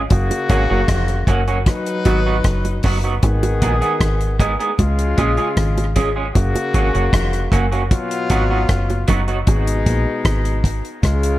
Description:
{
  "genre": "dub reggae",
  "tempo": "77 BPM",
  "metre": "4/4",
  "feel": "straight",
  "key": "G# dorian",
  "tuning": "A4 = 440 Hz",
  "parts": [
    { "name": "deep dub fingered electric bass", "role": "bass", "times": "0.0-11.4 s", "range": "E#1 to C#2", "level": "-19 LUFS", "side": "equal", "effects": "none" },
    { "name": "warm horn section", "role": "second line", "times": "0.1-11.4 s", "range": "B2 to B4", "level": "-23 LUFS", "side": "left 3 dB", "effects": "dub echo" },
    { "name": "damped 70s drum kit", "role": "drums", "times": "0.1-11.4 s", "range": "hi-hat, kick drum, rim click", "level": "-18 LUFS", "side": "equal", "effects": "none" },
    { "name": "bongos", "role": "percussion", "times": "0.1-9.7 s", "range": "none", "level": "-30 LUFS", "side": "right 5 dB", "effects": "none" },
    { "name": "electric guitar through a small old amp", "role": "accompaniment", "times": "0.5-9.4 s", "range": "F#3 to G#4", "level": "-23 LUFS", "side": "right 3 dB", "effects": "lush chorus, dub echo" }
  ],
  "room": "light reverb, small room ambience",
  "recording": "none",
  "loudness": "-15 LUFS",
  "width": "side -15 dB against mid",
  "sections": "0.0-11.4 A section",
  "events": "part muted 9.5-11.4",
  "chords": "0.1 F#; 1.7 B; 3.2 G#m; 4.8 C#; 6.4 F#; 7.9 B; 9.5 G#m",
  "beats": "| 0.11 0.89 1.67 2.45 | 3.23 4.01 4.79 5.57 | 6.35 7.13 7.91 8.69 | 9.47 10.26 11.04"
}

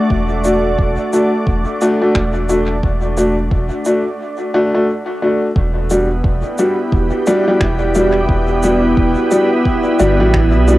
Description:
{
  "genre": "ambient dub",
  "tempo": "88 BPM",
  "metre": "4/4",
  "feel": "swing 60% on 16ths",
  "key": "E minor",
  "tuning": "A4 = 440 Hz",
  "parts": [
    { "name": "soft additive organ-like pad", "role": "sustained chords", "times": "0.0-10.8 s", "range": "A3 to D5", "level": "-18 LUFS", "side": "right 1 dB", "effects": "ensemble chorus, built-in reverb, cassette tape" },
    { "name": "soft dub sub bass", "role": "bass", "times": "0.1-10.8 s", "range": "E1 to B1", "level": "-17 LUFS", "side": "equal", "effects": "none" },
    { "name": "electronic kick drum", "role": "drums", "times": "0.1-10.5 s", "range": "none", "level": "-19 LUFS", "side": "equal", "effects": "overdrive, cassette tape" },
    { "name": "warm upright piano", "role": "stabs", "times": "0.4-10.8 s", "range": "G3 to F#4", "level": "-16 LUFS", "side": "left 1 dB", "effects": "cassette tape, dub echo" },
    { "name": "electronic shaker and finger snaps", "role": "drums", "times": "0.4-10.8 s", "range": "none", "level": "-29 LUFS", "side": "equal", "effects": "cassette tape, dub echo" }
  ],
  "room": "light reverb",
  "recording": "home recording on cassette",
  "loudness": "-12 LUFS",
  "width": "side -16 dB against mid",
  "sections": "0.0-5.6 A section; 5.6-10.8 B section",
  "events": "none",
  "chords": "0.0 D/E; 5.6 Em7",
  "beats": "| 0.11 0.79 1.47 2.15 | 2.83 3.52 4.20 4.88 | 5.56 6.24 6.92 7.61 | 8.29 8.97 9.65 10.33"
}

